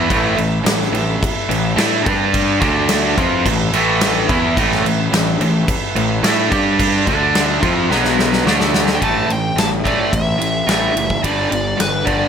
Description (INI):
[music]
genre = hard rock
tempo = 108 BPM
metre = 4/4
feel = straight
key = unclear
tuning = A4 = 440 Hz
[part]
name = overdriven tonewheel organ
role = sustained chords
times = 0.0-9.0 s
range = G3 to E5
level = -28 LUFS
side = right 1 dB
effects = none
[part]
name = distorted electric guitar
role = riff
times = 0.0-12.3 s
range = G2 to A4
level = -17 LUFS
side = right 1 dB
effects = overdrive
[part]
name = fuzz picked electric bass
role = bass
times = 0.0-12.2 s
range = F#1 to A2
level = -21 LUFS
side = equal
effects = overdrive
[part]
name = huge arena drum kit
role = drums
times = 0.1-12.2 s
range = crash cymbal, kick drum, ride cymbal, snare drum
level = -19 LUFS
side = equal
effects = none
[part]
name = nasal lead guitar with a parked wah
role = melody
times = 8.9-12.3 s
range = B4 to A5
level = -20 LUFS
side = equal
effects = overdrive
[sound]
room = light reverb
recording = none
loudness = -14 LUFS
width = side -7 dB against mid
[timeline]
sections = 0.0-9.0 A section; 9.0-12.3 B section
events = drum fill 7.9-9.0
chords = 0.0 A5; 2.1 G5; 2.6 D5; 3.2 A5; 6.5 G5; 7.1 D5; 7.6 Am; 7.9 B5; 8.5 D5; 9.0 A5; 11.2 G5